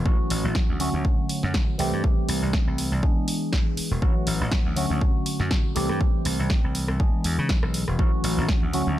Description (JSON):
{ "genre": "filtered disco house", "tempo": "121 BPM", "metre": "4/4", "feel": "swing 55% on 16ths", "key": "A major", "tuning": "A4 = 437 Hz", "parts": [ { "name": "tine electric piano", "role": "accompaniment", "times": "0.0-9.0 s", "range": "D3 to G#4", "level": "-27 LUFS", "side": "equal", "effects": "overdrive, phaser, sidechain pumping, low-pass filter" }, { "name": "slap bass", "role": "bass", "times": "0.0-9.0 s", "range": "E1 to C#3", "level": "-26 LUFS", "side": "equal", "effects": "sidechain pumping, low-pass filter" }, { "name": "electronic kick drum", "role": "drums", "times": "0.1-8.6 s", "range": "none", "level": "-22 LUFS", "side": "equal", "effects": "small room ambience" }, { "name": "punchy analog drum machine", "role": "drums", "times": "0.3-8.8 s", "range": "hi-hat, rim click, snare drum", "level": "-30 LUFS", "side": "equal", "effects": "overdrive, sidechain pumping on cymbals, small room ambience, sidechain pumping on hats" } ], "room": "little or no reverb", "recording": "none", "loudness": "-21 LUFS", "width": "side -13 dB against mid", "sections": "0.0-9.0 A section", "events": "none", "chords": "0.1 A6; 0.8 Dmaj7; 1.8 C6; 3.0 E7; 4.0 A6; 4.8 Dmaj7; 5.8 C6; 7.0 E7; 8.0 A6" }